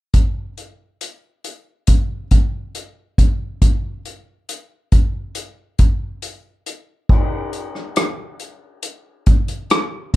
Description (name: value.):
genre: pop.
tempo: 69 BPM.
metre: 4/4.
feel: straight.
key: none.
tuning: none.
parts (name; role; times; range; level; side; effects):
soft-mallet drum kit; drums; 0.1-10.2 s; crash cymbal, hi-hat, kick drum, rim click; -16 LUFS; equal; none.
room: little or no reverb.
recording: none.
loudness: -16 LUFS.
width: side -17 dB against mid.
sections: 0.1-7.1 A section; 7.1-10.2 B section.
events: none.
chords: none.